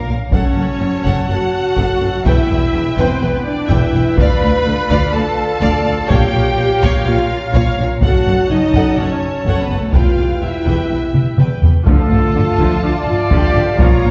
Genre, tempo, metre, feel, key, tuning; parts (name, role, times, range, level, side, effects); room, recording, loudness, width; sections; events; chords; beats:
cinematic, epic orchestral film score; 125 BPM; 4/4; straight; A4 = 442 Hz
rich studio violin section; melody; 0.0-14.1 s; A4 to B5; -27 LUFS; equal
warm symphonic violin section; second line; 0.0-14.1 s; F4 to G5; -27 LUFS; equal
rich symphonic viola section; accompaniment; 0.0-14.1 s; D3 to B4; -26 LUFS; equal
mellow French horn section; sustained chords; 0.0-14.0 s; A3 to B4; -23 LUFS; equal
warm woodwind section; sustained chords; 0.0-14.1 s; A3 to A5; -28 LUFS; equal
clear symphonic cello section; bass; 0.1-14.1 s; D2 to D3; -23 LUFS; equal
clear symphonic double bass section; bass; 0.1-14.1 s; E1 to D2; -24 LUFS; equal
taiko ensemble; drums; 0.3-14.1 s; -19 LUFS; equal
clear trumpet section; stabs; 11.9-14.1 s; A4 to D5; -22 LUFS; equal
timpani; percussion; 11.9-12.5 s; D3; -23 LUFS; equal
wet scoring stage reverb, RT60 1.7 s; heard from further back in the room, nothing above 7.8 kHz; -15 LUFS; mono
0.0-11.9 A section; 11.9-14.1 A section
drum fill 11.1-11.9
0.3 F#m; 2.3 Em; 4.2 Dm; 6.1 Bbm; 8.0 F#m; 9.9 Em; 11.9 Dm
| 0.33 0.81 1.29 1.77 | 2.25 2.73 3.22 3.70 | 4.18 4.66 5.14 5.62 | 6.10 6.58 7.06 7.54 | 8.02 8.50 8.98 9.46 | 9.95 10.43 10.90 11.38 | 11.87 12.35 12.82 13.30 | 13.79